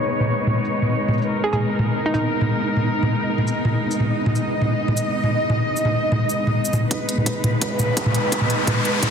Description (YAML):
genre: half-time drum and bass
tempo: 170 BPM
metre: 4/4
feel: half-time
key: G# minor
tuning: A4 = 440 Hz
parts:
  - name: muted studio cello section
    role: sustained chords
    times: 0.0-9.1 s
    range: G#3 to D#5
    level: -23 LUFS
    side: equal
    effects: sidechain pumping, low-pass filter
  - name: flickering grainy texture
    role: texture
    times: 0.0-9.1 s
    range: B3 to B4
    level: -28 LUFS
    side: right 1 dB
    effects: built-in reverb
  - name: industrial drum kit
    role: drums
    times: 0.2-9.1 s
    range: hi-hat, shaker, toms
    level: -22 LUFS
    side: equal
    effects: none
  - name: hollow square pluck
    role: melody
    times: 1.4-2.2 s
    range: D#4 to G#4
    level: -27 LUFS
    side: right 2 dB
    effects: chorus, dub echo
  - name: electronic kick drum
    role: drums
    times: 6.9-9.1 s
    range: none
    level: -29 LUFS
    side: left 1 dB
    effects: high-pass filter on kick, high-pass filter on room
  - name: riser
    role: sound effects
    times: 7.5-9.1 s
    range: none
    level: -25 LUFS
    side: right 1 dB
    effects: none
room: moderate huge ambient reverb, RT60 4.0 s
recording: dense, heavily limited modern master, low-pass filter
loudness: -18 LUFS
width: side -7 dB against mid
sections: 0.0-6.9 A section; 6.9-9.1 B section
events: build-up 6.9-9.1; riser 7.5-9.1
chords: 0.0 G#madd9; 6.9 G#m